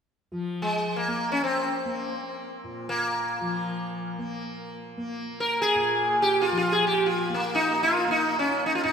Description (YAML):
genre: indian classical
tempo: free time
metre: none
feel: none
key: Bb raga bhimpalasi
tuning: A4 = 441 Hz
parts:
  - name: tanpura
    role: drone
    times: 0.3-8.9 s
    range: Bb2 to Bb3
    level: -33 LUFS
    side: left 2 dB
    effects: none
  - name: sitar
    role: melody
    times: 0.6-8.9 s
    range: Ab3 to Bb4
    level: -24 LUFS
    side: equal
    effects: none
room: wet church reverb, RT60 2.8 s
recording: recorded in a church or concert hall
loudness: -23 LUFS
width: side -7 dB against mid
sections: 0.3-8.9 A section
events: none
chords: none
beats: free time